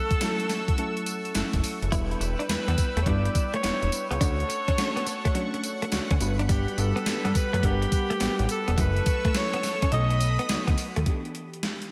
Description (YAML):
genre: R&B, new jack swing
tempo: 105 BPM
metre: 4/4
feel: swing 66% on 16ths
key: E dorian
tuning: A4 = 440 Hz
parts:
  - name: warm alto saxophone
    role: melody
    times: 0.0-10.7 s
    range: G4 to D#5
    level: -33 LUFS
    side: equal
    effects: tape echo
  - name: mellow FM electric piano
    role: accompaniment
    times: 0.0-11.9 s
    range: E3 to F#5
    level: -35 LUFS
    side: equal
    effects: chorus
  - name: lush unison pad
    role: sustained chords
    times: 0.0-11.1 s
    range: G3 to E6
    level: -38 LUFS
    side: equal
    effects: chorus
  - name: fat analog bass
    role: bass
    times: 0.1-11.0 s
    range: E1 to G2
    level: -29 LUFS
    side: equal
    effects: none
  - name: gated 80s digital drum machine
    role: drums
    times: 0.1-11.9 s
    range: hi-hat, kick drum, snare drum, tambourine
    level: -30 LUFS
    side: equal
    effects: gated reverb, gated reverb snare, overdrive
  - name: direct-recorded clean electric guitar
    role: riff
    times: 1.9-11.0 s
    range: F#3 to E4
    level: -37 LUFS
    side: equal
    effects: lush chorus
room: moderate lush hall reverb, RT60 1.9 s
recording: dreamy mix soaked in reverb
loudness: -26 LUFS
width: mono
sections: 0.0-11.1 A section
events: none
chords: 0.0 F#m7; 1.9 Em7; 4.2 Dmaj7; 6.2 Gmaj7; 8.8 F#m7; 9.9 B7; 11.1 Em7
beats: 0.21 0.78 1.35 | 1.92 2.49 3.06 3.63 | 4.21 4.78 5.35 5.92 | 6.49 7.06 7.63 8.21 | 8.78 9.35 9.92 10.49 | 11.06 11.63